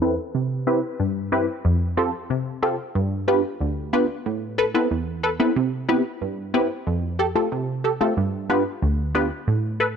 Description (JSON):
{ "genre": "dancehall", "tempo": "92 BPM", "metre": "4/4", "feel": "straight", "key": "unclear", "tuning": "A4 = 439 Hz", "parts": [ { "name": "punchy chord stab", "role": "solo", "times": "0.0-10.0 s", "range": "D2 to B4", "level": "-21 LUFS", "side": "equal", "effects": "chorus, phaser" } ], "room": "light reverb, digital ambience", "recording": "dark, warm production, low-pass filter", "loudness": "-21 LUFS", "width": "side -7 dB against mid", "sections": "0.0-3.0 A section; 3.0-10.0 B section", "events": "filter sweep 0.0-3.0", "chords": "0.3 Cmaj7; 1.6 Fadd9; 3.0 G7; 4.3 Amadd9; 5.6 Cmaj7; 6.9 Fadd9; 8.2 G7" }